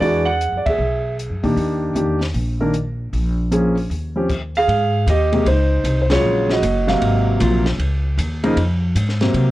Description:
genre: jazz piano trio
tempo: 154 BPM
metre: 4/4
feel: swing 65% on 8ths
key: Eb major, Ab major from 4.7 s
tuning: A4 = 440 Hz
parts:
  - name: warm concert grand piano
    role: melody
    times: 0.0-9.5 s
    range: C3 to F#5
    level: -18 LUFS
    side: equal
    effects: none
  - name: upright bass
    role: bass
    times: 0.0-9.5 s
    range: Gb1 to C3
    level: -20 LUFS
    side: equal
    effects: none
  - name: compact cocktail drum kit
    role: drums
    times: 0.0-9.5 s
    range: crash cymbal, hi-hat, kick drum, ride cymbal, snare drum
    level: -29 LUFS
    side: left 1 dB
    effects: none
room: light reverb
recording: worn, warbling old tape, cassette tape, warbly pitch drift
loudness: -16 LUFS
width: side -16 dB against mid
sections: 0.0-4.7 A section; 4.7-9.5 B section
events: band accent 0.6, 6.0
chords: 0.0 E9; 1.6 Ebmaj7; 3.1 Bbm7; 3.9 Ebsus2; 4.7 Abmaj7; 6.2 Ebm11; 7.0 Ab13; 7.8 Dbadd9

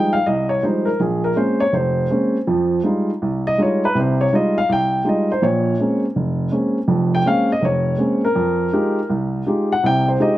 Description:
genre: solo jazz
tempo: 163 BPM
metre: 4/4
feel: swing 65% on 8ths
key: F minor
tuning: A4 = 440 Hz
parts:
  - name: dark baby grand piano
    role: solo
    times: 0.0-10.4 s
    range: F1 to G5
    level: -16 LUFS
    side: equal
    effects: none
room: little or no reverb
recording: recorded outdoors, with no room sound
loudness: -16 LUFS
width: side -15 dB against mid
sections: 0.0-10.4 A section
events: grand piano solo 0.0-10.4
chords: 0.0 Fm9; 1.0 Bbm9; 2.5 Fm9; 5.4 Bbm9; 8.4 Fm9

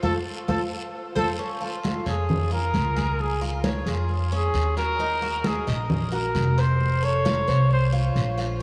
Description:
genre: latin, Cuban son and guajira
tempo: 133 BPM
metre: 4/4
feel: straight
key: Bb minor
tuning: A4 = 440 Hz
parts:
  - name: breathy trumpet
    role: melody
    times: 0.0-7.9 s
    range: F4 to Db5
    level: -30 LUFS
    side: equal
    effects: tape echo
  - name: Cuban tres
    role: arpeggios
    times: 0.0-8.6 s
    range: Db4 to F5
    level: -34 LUFS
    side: equal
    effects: none
  - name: upright bass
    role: bass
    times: 0.0-8.6 s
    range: F1 to F2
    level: -27 LUFS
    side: equal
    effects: none
  - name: congas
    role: percussion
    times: 0.0-8.6 s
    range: none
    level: -32 LUFS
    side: equal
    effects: none
  - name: guiro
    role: percussion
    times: 0.0-8.6 s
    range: none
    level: -42 LUFS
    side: equal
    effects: none
room: moderate huge ambient reverb, RT60 5.0 s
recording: dreamy mix soaked in reverb, small room ambience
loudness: -24 LUFS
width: mono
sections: 0.0-1.4 A section; 1.4-8.6 B section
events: band accent 0.0-1.4; trumpet solo 1.4-8.6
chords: 0.0 F; 1.4 Bbm; 3.2 Db; 5.0 Ebm; 6.8 F

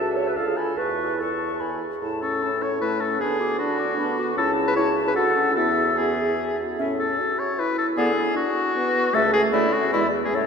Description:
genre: quick classical-period movement for wind quintet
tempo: 141-157 BPM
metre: 3/4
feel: rubato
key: A major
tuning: A4 = 440 Hz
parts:
  - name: hollow concert flute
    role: melody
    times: 0.0-10.5 s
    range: C#5 to D6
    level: -31 LUFS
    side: left 6 dB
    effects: none
  - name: warm oboe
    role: second line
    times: 0.0-10.5 s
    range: E4 to A5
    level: -24 LUFS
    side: left 3 dB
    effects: none
  - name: warm French horn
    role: accompaniment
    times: 0.0-10.5 s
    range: A3 to G#4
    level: -29 LUFS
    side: equal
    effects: none
  - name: warm clarinet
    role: accompaniment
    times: 0.0-10.5 s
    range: G#3 to C#5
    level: -29 LUFS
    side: right 4 dB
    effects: none
  - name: mellow bassoon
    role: bass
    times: 0.0-10.5 s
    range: C#2 to A2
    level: -27 LUFS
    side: right 2 dB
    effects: none
room: wet cathedral reverb, RT60 5.2 s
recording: recorded in a church or concert hall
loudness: -20 LUFS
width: side -6 dB against mid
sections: 0.0-2.0 A section; 2.0-10.5 B section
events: none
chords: 0.4 Dm; 0.8 A/E; 1.6 E; 2.0 A; 3.2 Bm/D; 4.4 A/C#; 5.2 D; 5.6 E; 6.8 A; 8.0 Bm/D; 9.1 A/C#; 9.5 D; 9.9 E7

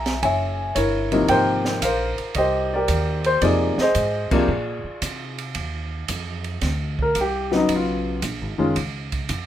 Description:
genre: jazz piano trio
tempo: 112 BPM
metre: 4/4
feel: swing 68% on 8ths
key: Eb major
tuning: A4 = 440 Hz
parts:
  - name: warm baby grand piano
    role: melody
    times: 0.0-8.7 s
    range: C3 to Bb5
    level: -20 LUFS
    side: left 1 dB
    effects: none
  - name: upright bass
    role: bass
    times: 0.0-9.5 s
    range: Gb1 to C3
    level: -27 LUFS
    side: right 1 dB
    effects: none
  - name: open jazz drum kit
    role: drums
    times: 0.1-9.5 s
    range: crash cymbal, hi-hat, kick drum, ride cymbal, snare drum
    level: -29 LUFS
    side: right 3 dB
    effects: none
room: light reverb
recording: minimal, uncompressed stereo recording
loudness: -20 LUFS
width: side -11 dB against mid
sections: 0.0-5.6 A section; 5.6-9.5 B section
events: band accent 4.2; grand piano solo 5.6-9.5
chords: 0.2 Gb9; 1.3 Abmaj9; 3.4 Fm7; 4.5 Bb9; 5.6 Ebsus2; 7.7 Abm9; 8.8 Db

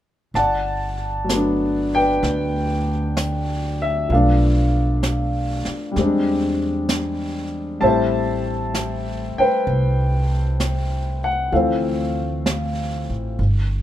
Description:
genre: jazz ballad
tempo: 64 BPM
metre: 4/4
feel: swing 68% on 8ths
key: G major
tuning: A4 = 440 Hz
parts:
  - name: upright bass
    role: bass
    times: 0.3-13.8 s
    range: G1 to E2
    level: -22 LUFS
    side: right 1 dB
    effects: none
  - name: warm upright piano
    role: accompaniment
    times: 0.4-13.4 s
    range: E3 to A5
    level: -20 LUFS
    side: left 1 dB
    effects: none
  - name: jazz brush drum kit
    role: drums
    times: 0.4-13.8 s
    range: brushed snare drum, hi-hat, snare drum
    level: -28 LUFS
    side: right 2 dB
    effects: none
room: light reverb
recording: minimal, uncompressed stereo recording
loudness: -18 LUFS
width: side -12 dB against mid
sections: 0.3-13.8 A section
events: none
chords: 0.3 Gmaj9; 4.1 Bm7b5; 6.0 E7alt; 7.8 Am9; 11.5 Dm7

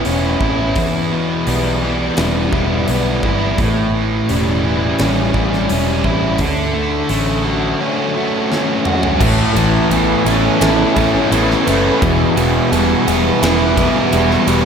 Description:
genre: rock, shoegaze and dream pop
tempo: 85 BPM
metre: 4/4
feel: straight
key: A mixolydian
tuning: A4 = 440 Hz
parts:
  - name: overdriven electric guitar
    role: riff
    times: 0.0-14.7 s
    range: E2 to F#4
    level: -18 LUFS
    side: right 7 dB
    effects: reverse reverb
  - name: thick fuzz guitar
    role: riff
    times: 0.0-14.7 s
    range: E2 to F#4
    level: -18 LUFS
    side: left 7 dB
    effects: distortion, ensemble chorus
  - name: vintage muted fingered electric bass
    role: bass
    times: 0.1-14.7 s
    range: E1 to D2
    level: -20 LUFS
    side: equal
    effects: none
  - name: huge arena drum kit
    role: drums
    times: 0.1-14.6 s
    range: crash cymbal, hi-hat, kick drum, ride cymbal, snare drum, toms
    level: -21 LUFS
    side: right 1 dB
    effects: none
  - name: crunchy overdriven guitar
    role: riff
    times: 9.2-14.7 s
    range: E2 to A3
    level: -18 LUFS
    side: right 1 dB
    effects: lush chorus
room: moderate plate reverb, RT60 2.8 s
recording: dreamy mix soaked in reverb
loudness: -13 LUFS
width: side -7 dB against mid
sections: 0.0-9.2 A section; 9.2-14.7 B section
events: drum fill 8.5-9.2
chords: 0.0 Aadd9; 0.8 Em; 3.6 A7; 6.4 Dmaj7; 9.2 Aadd9; 12.0 Em

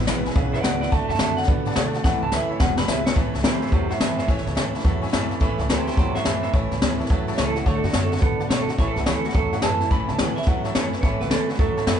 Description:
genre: rockabilly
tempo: 214 BPM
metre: 4/4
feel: swing 64% on 8ths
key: A major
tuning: A4 = 441 Hz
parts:
  - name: honky-tonk upright piano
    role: accompaniment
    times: 0.0-12.0 s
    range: B4 to B5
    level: -33 LUFS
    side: left 4 dB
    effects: none
  - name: picked steel-string acoustic guitar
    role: accompaniment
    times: 0.0-12.0 s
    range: E2 to F#4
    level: -32 LUFS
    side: left 2 dB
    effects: none
  - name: twangy electric guitar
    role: riff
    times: 0.0-12.0 s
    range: E2 to B3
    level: -28 LUFS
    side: right 3 dB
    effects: none
  - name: upright bass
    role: bass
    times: 0.0-12.0 s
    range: E1 to B2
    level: -29 LUFS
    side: equal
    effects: none
  - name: jazz brush drum kit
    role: drums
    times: 0.0-12.0 s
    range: hi-hat, kick drum, snare drum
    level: -22 LUFS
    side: left 1 dB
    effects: none
  - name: electric guitar through a small old amp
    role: melody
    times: 0.5-12.0 s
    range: F#4 to B5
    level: -27 LUFS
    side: right 2 dB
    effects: none
room: light reverb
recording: band playing live in one room, nothing above 10.5 kHz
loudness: -19 LUFS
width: side -8 dB against mid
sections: 0.0-3.2 A section; 3.2-12.0 B section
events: clean electric guitar solo 0.0-3.2; drum fill 2.0-3.2; honky-tonk piano fill 4.9-5.4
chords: 0.0 E; 0.9 D; 2.0 A; 2.6 E; 3.2 A; 7.7 D; 8.8 A

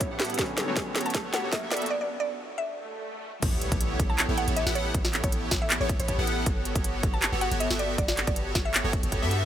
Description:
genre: future bass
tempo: 158 BPM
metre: 4/4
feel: swing 54% on 16ths, half-time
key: unclear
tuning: A4 = 440 Hz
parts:
  - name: mallet-like synth pluck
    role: melody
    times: 0.0-8.9 s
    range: C#5 to A5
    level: -34 LUFS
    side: equal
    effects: chorus, sidechain pumping, tape echo
  - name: felt-muted upright piano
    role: accompaniment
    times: 0.0-3.4 s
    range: D3 to C#4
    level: -40 LUFS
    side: equal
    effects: sidechain pumping, tape echo
  - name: airy breathy pad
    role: sustained chords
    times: 0.0-1.9 s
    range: G2 to A4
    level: -44 LUFS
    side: right 1 dB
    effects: none
  - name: big bright polysynth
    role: riff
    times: 0.0-9.5 s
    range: B3 to F#5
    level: -31 LUFS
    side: right 1 dB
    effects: wide subtle chorus, sidechain pumping
  - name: electronic kick drum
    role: drums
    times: 0.0-9.2 s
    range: none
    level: -29 LUFS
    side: equal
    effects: overdrive
  - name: trap drum kit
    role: drums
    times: 0.0-9.4 s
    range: crash cymbal, handclaps, hi-hat, snare drum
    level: -29 LUFS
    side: equal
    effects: none
  - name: riser, swell and impact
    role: sound effects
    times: 0.1-4.9 s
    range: none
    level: -40 LUFS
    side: equal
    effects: none
  - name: warm 808-style bass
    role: bass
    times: 3.4-9.5 s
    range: G1 to G2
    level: -31 LUFS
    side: equal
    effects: sidechain pumping
room: light reverb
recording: high-pass filter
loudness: -24 LUFS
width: side -11 dB against mid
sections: 0.0-3.4 A section; 3.4-9.5 B section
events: build-up 0.0-3.4; drum fill 0.0-1.9; filter sweep on synth pluck 0.0-3.4; filter sweep 0.0-3.4; break 1.9-3.4; swell 2.8-3.4; drop 3.4-9.5; impact 3.4-4.9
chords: 0.4 Gmaj9#11; 3.4 A9; 6.5 Gmaj9#11

